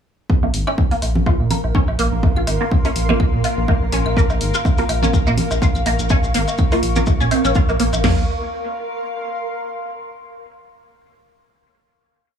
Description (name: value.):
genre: minimal techno.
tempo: 124 BPM.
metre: 4/4.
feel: swing 55% on 16ths.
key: Bb minor.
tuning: A4 = 440 Hz.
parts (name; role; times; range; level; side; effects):
punchy analog drum machine; drums; 0.3-8.2 s; crash cymbal, kick drum, snare drum, toms; -16 LUFS; equal; none.
granular cloud pad; texture; 1.3-9.9 s; Bb4 to Db6; -26 LUFS; left 1 dB; built-in reverb, sidechain pumping.
pulsing gated texture; texture; 0.7-8.1 s; Bb3 to Bb4; -32 LUFS; left 1 dB; chorus, built-in reverb, sidechain pumping.
resonant blip pluck; riff; 0.4-8.3 s; Bb3 to F4; -23 LUFS; right 1 dB; phaser, ensemble chorus, cassette tape, sidechain pumping, tape echo.
rubbery square bass; bass; 0.4-8.3 s; Ab1 to Bb2; -20 LUFS; equal; sidechain pumping.
woodblock, claves and congas; percussion; 0.4-8.0 s; none; -27 LUFS; right 1 dB; dub echo.
electronic hi-hat; drums; 0.5-7.9 s; none; -28 LUFS; left 3 dB; none.
filtered dub chord stab; stabs; 2.9-8.2 s; Bb3 to Bb4; -26 LUFS; right 1 dB; phaser, lush chorus, dub echo.
maracas; percussion; 4.2-8.0 s; none; -31 LUFS; left 4 dB; none.
room: light reverb.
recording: small room ambience.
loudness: -16 LUFS.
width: side -8 dB against mid.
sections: 0.3-8.0 groove; 8.0-10.0 final chord.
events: none.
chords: 0.3 Bb5.